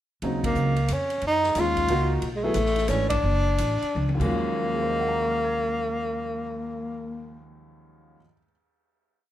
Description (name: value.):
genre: modal jazz.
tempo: 154-181 BPM.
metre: 3/4.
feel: swing 64% on 8ths.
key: Eb dorian.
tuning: A4 = 439 Hz.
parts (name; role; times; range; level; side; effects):
warm grand piano; accompaniment; 0.2-8.5 s; Eb2 to Ab6; -30 LUFS; right 1 dB; none.
upright bass; bass; 0.2-8.1 s; F#1 to Gb2; -28 LUFS; equal; none.
swinging big-band drum kit; drums; 0.2-4.3 s; crash cymbal, hi-hat, kick drum, ride cymbal, snare drum, toms; -35 LUFS; left 1 dB; none.
breathy tenor saxophone; melody; 0.5-7.4 s; Ab3 to F4; -25 LUFS; left 1 dB; none.
room: moderate club reverb, RT60 0.6 s.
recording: minimal, uncompressed stereo recording.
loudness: -22 LUFS.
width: side -12 dB against mid.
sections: 0.2-4.3 A section; 4.3-6.7 final chord.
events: band accent 0.4, 3.1; slowing down 2.2-4.3; drum fill 4.0-4.3.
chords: 0.2 Ebm11; 2.2 Bm11; 4.2 Ebm11.